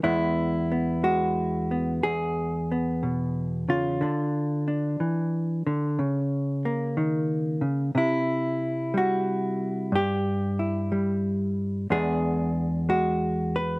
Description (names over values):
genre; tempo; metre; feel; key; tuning
solo jazz; 61 BPM; 4/4; swing 67% on 8ths, rubato; unclear; A4 = 442 Hz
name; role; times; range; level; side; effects
hollow-body jazz guitar; solo; 0.0-13.8 s; E2 to B4; -23 LUFS; equal; none
room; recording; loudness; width
light reverb; recorded outdoors, with no room sound; -24 LUFS; side -24 dB against mid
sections
0.0-13.8 A section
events
none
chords
0.0 E; 4.0 Dmadd9; 6.0 C#69; 8.0 C; 11.9 E9